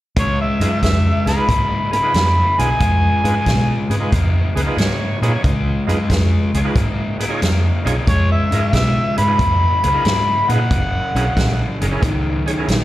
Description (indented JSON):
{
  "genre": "electric blues shuffle",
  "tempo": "91 BPM",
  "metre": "4/4",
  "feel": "swing 68% on 8ths",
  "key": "Db mixolydian",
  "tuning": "A4 = 440 Hz",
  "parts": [
    { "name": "overdriven harmonica", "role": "melody", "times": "0.2-3.9, 8.1-11.8 s", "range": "Db5 to Cb6", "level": "-19 LUFS", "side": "equal", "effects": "slapback echo" },
    { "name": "raw garage guitar", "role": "riff", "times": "0.2-12.8 s", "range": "Gb2 to Bb3", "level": "-22 LUFS", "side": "left 2 dB", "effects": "overdrive, slapback echo" },
    { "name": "vintage muted fingered electric bass", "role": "bass", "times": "0.2-12.8 s", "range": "Gb1 to Cb3", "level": "-18 LUFS", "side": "equal", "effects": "none" },
    { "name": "vintage drum kit", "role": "drums", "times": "0.2-12.8 s", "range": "hi-hat, kick drum, snare drum", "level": "-21 LUFS", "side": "equal", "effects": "none" },
    { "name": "overdriven tonewheel organ", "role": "accompaniment", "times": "0.6-12.7 s", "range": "Db4 to Db5", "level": "-26 LUFS", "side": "right 3 dB", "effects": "slow rotary speaker, slapback echo" }
  ],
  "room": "small room ambience",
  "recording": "live gig heard through the venue's PA, recital hall reverb",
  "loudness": "-15 LUFS",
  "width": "side -15 dB against mid",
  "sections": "0.2-12.8 A section",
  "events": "tonewheel organ fill 4.4-5.4",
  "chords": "0.2 Db7; 10.7 Gb7"
}